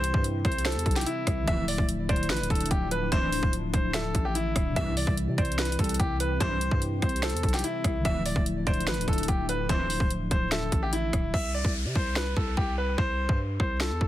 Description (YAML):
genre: hip hop, trap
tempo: 146 BPM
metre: 4/4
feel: half-time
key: unclear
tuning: A4 = 440 Hz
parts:
  - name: bright concert grand piano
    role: melody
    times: 0.0-14.1 s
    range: E4 to E5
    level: -31 LUFS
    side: equal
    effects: digital delay
  - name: mellow tine electric piano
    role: accompaniment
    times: 0.0-11.4 s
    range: C3 to E4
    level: -34 LUFS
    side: left 2 dB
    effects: none
  - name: dark analog pad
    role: sustained chords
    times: 0.0-11.3 s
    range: C3 to G4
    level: -38 LUFS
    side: left 1 dB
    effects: chorus, phaser
  - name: growling 808-style bass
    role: bass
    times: 0.0-14.1 s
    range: D1 to C3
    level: -31 LUFS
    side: equal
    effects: none
  - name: trap drum kit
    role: drums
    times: 0.0-14.1 s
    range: hi-hat, kick drum, rim click, snare drum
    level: -28 LUFS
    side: equal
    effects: overdrive
  - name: mallet-like synth pluck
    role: second line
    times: 0.7-10.9 s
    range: C5 to E5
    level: -39 LUFS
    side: right 3 dB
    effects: chorus, digital delay
  - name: sync-sweep polysynth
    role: stabs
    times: 1.5-9.9 s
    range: A1 to E3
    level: -37 LUFS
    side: right 2 dB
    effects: chorus
  - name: downlifter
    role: sound effects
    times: 11.3-14.1 s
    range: none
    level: -38 LUFS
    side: left 1 dB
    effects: none
room: little or no reverb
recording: dense, heavily limited modern master, vinyl crackle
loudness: -24 LUFS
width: side -14 dB against mid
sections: 0.0-11.3 A section; 11.3-14.1 B section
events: hi-hats muted 11.3-14.1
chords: 0.0 C; 1.5 Dmadd9; 4.8 C; 8.1 Dmadd9; 11.3 N.C.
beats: 0.24 0.65 1.06 | 1.48 1.89 2.30 2.71 | 3.12 3.53 3.94 4.35 | 4.76 5.17 5.58 6.00 | 6.41 6.82 7.23 7.64 | 8.05 8.46 8.87 9.28 | 9.69 10.11 10.52 10.93 | 11.34 11.75 12.16 12.57 | 12.98 13.39 13.80